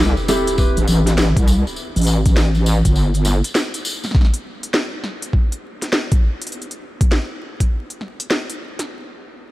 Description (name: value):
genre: glitch hop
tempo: 101 BPM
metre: 4/4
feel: swing 64% on 16ths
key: A minor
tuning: A4 = 440 Hz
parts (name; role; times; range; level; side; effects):
- wobble bass; bass; 0.0-3.4 s; G1 to C2; -15 LUFS; equal; chorus, overdrive
- sub drop; sound effects; 0.0-1.8 s; none; -29 LUFS; equal; none
- tambourine; percussion; 0.2-4.1 s; none; -28 LUFS; left 1 dB; none
- mellow electric guitar; stabs; 0.3-0.8 s; C4 to B4; -23 LUFS; equal; sidechain pumping, tape echo
- drum and bass drum kit; drums; 0.3-8.9 s; hi-hat, snare drum; -23 LUFS; equal; none
- electronic kick drum; drums; 0.6-7.7 s; none; -15 LUFS; equal; overdrive
room: light reverb, digital ambience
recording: vinyl crackle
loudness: -16 LUFS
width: side -17 dB against mid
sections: 0.0-8.9 A section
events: impact 0.0-1.8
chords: 0.0 Am7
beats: 0.58 1.18 | 1.77 2.36 2.96 3.55 | 4.14 4.74 5.33 5.93 | 6.52 7.12 7.71 8.30